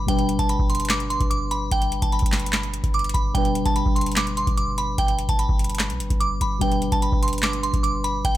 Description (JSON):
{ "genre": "hip hop, trap", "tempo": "147 BPM", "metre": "4/4", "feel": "half-time", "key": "G major", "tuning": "A4 = 438 Hz", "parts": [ { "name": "glassy synth bell", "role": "melody", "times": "0.0-8.4 s", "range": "G5 to D6", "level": "-25 LUFS", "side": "right 1 dB", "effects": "chorus, tremolo" }, { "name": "muted felt-like synth keys", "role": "accompaniment", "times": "0.0-8.4 s", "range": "B2 to B4", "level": "-28 LUFS", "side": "left 1 dB", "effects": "chorus" }, { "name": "clean 808-style bass", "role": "bass", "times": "0.0-8.4 s", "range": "F#1 to B1", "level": "-27 LUFS", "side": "equal", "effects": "none" }, { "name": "booming analog drum machine", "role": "drums", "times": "0.1-8.4 s", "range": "handclaps, hi-hat, kick drum, snare drum", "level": "-24 LUFS", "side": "equal", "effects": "none" } ], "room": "little or no reverb", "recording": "none", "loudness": "-20 LUFS", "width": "side -14 dB against mid", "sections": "0.0-8.4 A section", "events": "none", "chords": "0.0 G" }